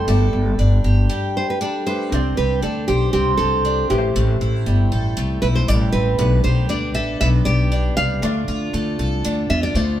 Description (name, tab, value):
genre	pop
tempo	118 BPM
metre	4/4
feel	straight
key	C major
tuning	A4 = 440 Hz
part	nylon-string guitar	melody	0.0-10.0 s	G4 to F5	-23 LUFS	right 1 dB	none
part	clear upright piano	accompaniment	0.0-10.0 s	A3 to D5	-31 LUFS	right 1 dB	none
part	picked twelve-string acoustic guitar	accompaniment	0.0-10.0 s	A2 to C5	-24 LUFS	right 1 dB	none
part	upright bass	bass	0.0-10.0 s	G1 to E2	-18 LUFS	equal	none
room	moderate studio reverb, RT60 0.8 s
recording	band playing live in one room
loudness	-16 LUFS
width	side -12 dB against mid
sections	0.0-2.1 A section; 2.1-10.0 B section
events	break 1.1-2.1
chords	0.1 Gsus2; 2.1 Csus2; 3.9 Am7; 6.2 Gadd9; 8.2 Dm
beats	| 0.08 0.59 1.10 1.61 | 2.12 2.63 3.14 3.65 | 4.16 4.67 5.18 5.68 | 6.19 6.70 7.21 7.72 | 8.22 8.73 9.24 9.75